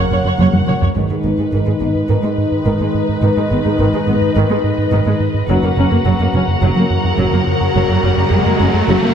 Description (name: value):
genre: cinematic, hybrid orchestral and electronic film score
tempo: 106 BPM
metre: 4/4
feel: straight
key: G# minor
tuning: A4 = 440 Hz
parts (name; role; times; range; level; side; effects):
- dark symphonic violin section; second line; 0.0-9.1 s; A#4 to F#5; -24 LUFS; left 3 dB; none
- rich symphonic viola section; accompaniment; 0.0-9.1 s; D#3 to C#5; -22 LUFS; equal; low-pass filter
- hollow soft pad; sustained chords; 0.0-9.1 s; C#3 to A#5; -19 LUFS; left 1 dB; chorus, low-pass filter
- rubbery square bass; riff; 0.0-9.1 s; F#2 to G#3; -18 LUFS; right 1 dB; low-pass filter
- rich symphonic cello section; bass; 0.0-9.1 s; F#2 to G#2; -22 LUFS; right 3 dB; none
- warm symphonic double bass section; bass; 0.1-8.9 s; F#1 to G#1; -22 LUFS; right 3 dB; none
- taiko ensemble; drums; 0.4-1.1 s; none; -19 LUFS; equal; none
- warm symphonic violin section; melody; 1.0-9.1 s; D#5 to F#5; -25 LUFS; left 3 dB; low-pass filter
- riser; sound effects; 6.4-9.1 s; none; -21 LUFS; right 1 dB; none
room: moderate scoring stage reverb, RT60 1.9 s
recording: none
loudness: -13 LUFS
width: side -8 dB against mid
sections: 1.0-9.1 A section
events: drum fill 0.4-1.0; filter sweep 1.0-9.1; riser 6.4-9.1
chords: 0.0 F#; 1.0 G#m; 5.5 F#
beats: 0.40 | 0.96 1.53 2.09 2.66 | 3.23 3.79 4.36 4.92 | 5.49 6.05 6.62 7.19 | 7.75 8.32 8.88